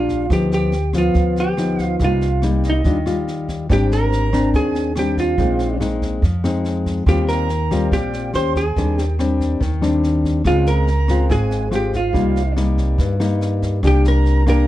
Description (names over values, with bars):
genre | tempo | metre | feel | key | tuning
bossa nova | 142 BPM | 4/4 | straight | unclear | A4 = 444 Hz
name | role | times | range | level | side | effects
vintage hollow-body jazz guitar | melody | 0.0-14.7 s | Eb4 to C5 | -22 LUFS | right 2 dB | none
breathy bright jazz flute | second line | 0.0-14.7 s | Eb5 to C6 | -29 LUFS | right 6 dB | none
nylon-string guitar | accompaniment | 0.0-14.7 s | G2 to C5 | -20 LUFS | left 3 dB | none
upright bass | bass | 0.0-14.6 s | Ab1 to G2 | -20 LUFS | equal | none
jazz brush drum kit | drums | 0.1-14.6 s | kick drum, rim click, snare drum | -25 LUFS | equal | none
room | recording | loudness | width
light reverb | dark, warm production | -16 LUFS | side -14 dB against mid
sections
0.0-3.7 A section; 3.7-14.7 B section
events
none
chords
0.3 G7b13/D; 2.0 Cm7; 2.8 Ebmaj9; 3.7 Abmaj9#11; 5.4 Bb9sus4; 7.1 Eb69; 8.3 Eb6; 8.8 Abmaj7#11/Eb; 10.5 Dbmaj7; 12.1 Cm7; 13.8 C7sus2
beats
| 0.30 0.73 1.15 1.57 | 2.00 2.42 2.84 3.26 | 3.69 4.11 4.53 4.95 | 5.38 5.80 6.22 6.64 | 7.07 7.49 7.91 8.34 | 8.76 9.18 9.61 10.03 | 10.45 10.87 11.30 11.72 | 12.14 12.57 12.99 13.41 | 13.83 14.26